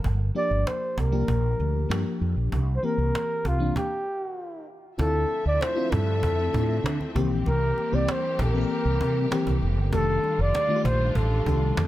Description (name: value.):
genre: polished 1980s jazz-funk pop.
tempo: 97 BPM.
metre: 4/4.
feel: straight.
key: unclear.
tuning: A4 = 440 Hz.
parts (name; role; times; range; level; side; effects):
FM electric piano with soft pad layer; accompaniment; 0.0-11.9 s; Eb3 to Bb4; -29 LUFS; left 2 dB; lush chorus.
mellow fretless electric bass; bass; 0.0-11.9 s; F1 to D3; -24 LUFS; equal; ensemble chorus.
cajon; drums; 0.0-11.9 s; none; -32 LUFS; equal; none.
breathy flugelhorn; melody; 0.4-11.9 s; F4 to D5; -28 LUFS; equal; none.
warm studio string section; sustained chords; 5.0-11.9 s; D3 to E5; -35 LUFS; equal; none.
congas; percussion; 5.0-11.9 s; none; -37 LUFS; right 2 dB; none.
room: small room ambience.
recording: none.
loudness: -22 LUFS.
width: side -14 dB against mid.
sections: 0.0-5.0 A section; 5.0-11.9 B section.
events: stop 3.8-5.0.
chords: 0.0 Gm7; 2.5 C7; 4.4 N.C.; 5.0 Dm9; 7.2 C7; 9.9 F13.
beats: | 0.05 0.67 1.29 1.91 | 2.52 3.14 3.76 4.38 | 5.00 5.61 6.23 6.84 | 7.46 8.08 8.69 9.31 | 9.92 10.54 11.15 11.77.